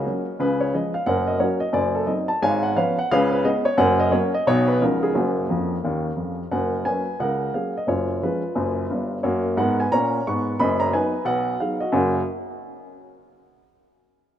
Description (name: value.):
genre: jazz, stride piano.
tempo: 177 BPM.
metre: 4/4.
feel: swing 62% on 8ths.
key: F# major.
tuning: A4 = 440 Hz.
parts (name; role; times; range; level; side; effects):
warm upright piano; solo; 0.0-12.2 s; F#1 to C#6; -20 LUFS; equal; none.
room: moderate plate reverb, RT60 2.8 s.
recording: rough home demo mix.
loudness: -20 LUFS.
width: side -10 dB against mid.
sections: 0.0-6.5 A section; 6.5-11.9 B section; 11.9-13.3 C section.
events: upright piano fill 5.5-6.5.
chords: 0.4 C#; 1.1 F#; 1.8 F#dim7; 2.4 C#7/G#; 3.1 C#5; 3.8 F#; 4.5 B; 4.8 C#13; 5.1 F#; 7.9 C#7/F#; 9.2 F#; 10.6 B/F#; 11.9 F#.